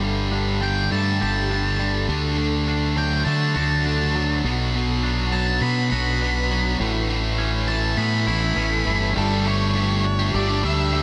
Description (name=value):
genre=post-rock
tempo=102 BPM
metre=4/4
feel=straight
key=G lydian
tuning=A4 = 440 Hz
part: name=shimmering ambient pad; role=sustained chords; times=0.0-11.0 s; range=C#4 to A5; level=-36 LUFS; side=equal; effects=chorus, built-in reverb, phaser
part: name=twangy electric guitar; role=arpeggios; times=0.0-11.0 s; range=A2 to G4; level=-32 LUFS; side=equal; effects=tape echo
part: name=distorted electric guitar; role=riff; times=0.0-11.0 s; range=G2 to G4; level=-27 LUFS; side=equal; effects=overdrive
part: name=fuzz fingered electric bass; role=bass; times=0.0-11.0 s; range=G1 to D3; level=-25 LUFS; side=equal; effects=overdrive
part: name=octave-fuzz lead guitar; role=melody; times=0.6-11.0 s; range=A4 to B5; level=-29 LUFS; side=equal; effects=distortion, tape echo
room=light reverb, digital ambience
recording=none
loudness=-22 LUFS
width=mono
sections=0.0-9.2 A section; 9.2-11.0 B section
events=build-up 0.0-9.2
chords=0.0 Gsus2; 2.1 D; 4.5 Bm; 6.8 Aadd9; 9.2 Gsus2